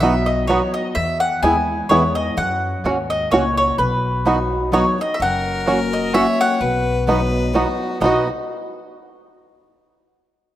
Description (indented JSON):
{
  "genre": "bluegrass",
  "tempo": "128 BPM",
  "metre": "3/4",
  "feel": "swing 55% on 8ths",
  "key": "B major",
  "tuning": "A4 = 440 Hz",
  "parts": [
    { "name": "mandolin", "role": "melody", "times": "0.0-8.3 s", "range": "B4 to G#5", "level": "-20 LUFS", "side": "left 1 dB", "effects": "none" },
    { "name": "picked steel-string acoustic guitar", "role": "accompaniment", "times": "0.0-8.2 s", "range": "E2 to F#4", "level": "-24 LUFS", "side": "left 2 dB", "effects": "none" },
    { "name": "bluegrass banjo", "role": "arpeggios", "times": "0.0-8.3 s", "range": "B3 to G#4", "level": "-21 LUFS", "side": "right 2 dB", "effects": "none" },
    { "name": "mandolin", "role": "stabs", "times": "0.0-8.2 s", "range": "A#3 to B5", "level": "-32 LUFS", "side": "right 5 dB", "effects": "none" },
    { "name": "upright bass", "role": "bass", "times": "0.0-8.3 s", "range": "F#1 to F#2", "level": "-26 LUFS", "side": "equal", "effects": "none" },
    { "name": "bright fiddle", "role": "second line", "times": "5.2-8.3 s", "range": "F#4 to C#5", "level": "-24 LUFS", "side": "left 3 dB", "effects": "none" }
  ],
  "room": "wet plate reverb, RT60 2.6 s",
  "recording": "rough home demo mix",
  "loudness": "-16 LUFS",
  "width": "side -13 dB against mid",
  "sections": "0.0-5.2 A section; 5.2-8.0 B section; 8.0-9.4 C section",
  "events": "none",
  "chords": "0.0 B; 1.0 E; 2.4 F#; 3.8 B; 5.2 F#; 6.6 B"
}